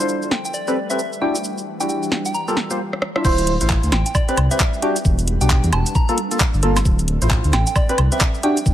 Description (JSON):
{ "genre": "UK garage, two-step garage", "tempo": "133 BPM", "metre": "4/4", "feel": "swing 61% on 16ths", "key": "unclear", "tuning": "A4 = 442 Hz", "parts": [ { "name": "ethereal airy pad", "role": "sustained chords", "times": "0.0-8.7 s", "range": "F3 to E5", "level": "-31 LUFS", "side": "right 1 dB", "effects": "ensemble chorus, built-in reverb, sidechain pumping" }, { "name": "percussive organ stab", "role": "stabs", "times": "0.0-8.6 s", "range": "Bb3 to E5", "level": "-22 LUFS", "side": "equal", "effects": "lush chorus" }, { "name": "garage drum kit", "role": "drums", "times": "0.0-8.7 s", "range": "crash cymbal, handclaps, hi-hat, rim click, shaker, snare drum, woodblock", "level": "-23 LUFS", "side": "equal", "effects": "none" }, { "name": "soft synth bell", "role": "melody", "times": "0.3-8.6 s", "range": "D5 to Bb5", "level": "-26 LUFS", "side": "left 1 dB", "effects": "chorus, phaser" }, { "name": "dark detuned saw bass", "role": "bass", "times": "3.2-8.7 s", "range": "D1 to E2", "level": "-18 LUFS", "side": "equal", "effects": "none" }, { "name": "electronic kick drum", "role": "drums", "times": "3.2-8.7 s", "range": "none", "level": "-18 LUFS", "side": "equal", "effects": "none" } ], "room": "digital ambience", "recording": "lossy compression artefacts", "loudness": "-16 LUFS", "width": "side -12 dB against mid", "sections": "0.0-3.2 A section; 3.2-8.7 B section", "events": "filter sweep on ambient pad 0.0-3.2; drum fill 2.9-3.2; drop 3.2-8.7", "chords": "0.3 Am9; 1.2 Em9; 2.3 Gm9; 3.2 Dm9; 3.9 Am9; 4.8 Em9; 6.0 Gm9; 6.9 Dm9; 7.5 Am9" }